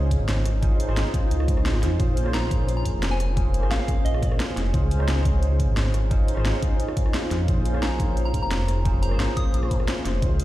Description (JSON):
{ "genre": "liquid drum and bass", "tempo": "175 BPM", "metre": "4/4", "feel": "straight", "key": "Bb minor", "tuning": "A4 = 440 Hz", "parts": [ { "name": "barky tine electric piano", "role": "accompaniment", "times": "0.0-10.4 s", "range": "Bb3 to C5", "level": "-30 LUFS", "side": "equal", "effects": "phaser, tape echo" }, { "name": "shimmering ambient pad", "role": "sustained chords", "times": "0.0-10.4 s", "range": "Db4 to C5", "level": "-34 LUFS", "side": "left 1 dB", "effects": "chorus, built-in reverb, sidechain pumping" }, { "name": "dark detuned saw bass", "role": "bass", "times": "0.0-10.4 s", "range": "F1 to F2", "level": "-23 LUFS", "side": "equal", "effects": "tube saturation" }, { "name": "drum and bass drum kit", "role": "drums", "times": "0.1-10.4 s", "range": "hi-hat, rim click, snare drum", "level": "-31 LUFS", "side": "equal", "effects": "overdrive" }, { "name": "electronic kick drum", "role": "drums", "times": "0.1-10.3 s", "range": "none", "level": "-23 LUFS", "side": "equal", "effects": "overdrive" }, { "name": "soft synth bell", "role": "melody", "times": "2.3-4.4, 7.8-9.7 s", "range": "Eb5 to Eb6", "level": "-34 LUFS", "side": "equal", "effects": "chorus, phaser, tape echo" } ], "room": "little or no reverb", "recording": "played on a big sound system in a bare room, large studio reverb", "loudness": "-20 LUFS", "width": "side -15 dB against mid", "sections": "0.0-10.4 A section", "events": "none", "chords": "0.0 Dbmaj9; 2.0 Bbm9; 4.7 Dbmaj9; 7.5 Bbm9" }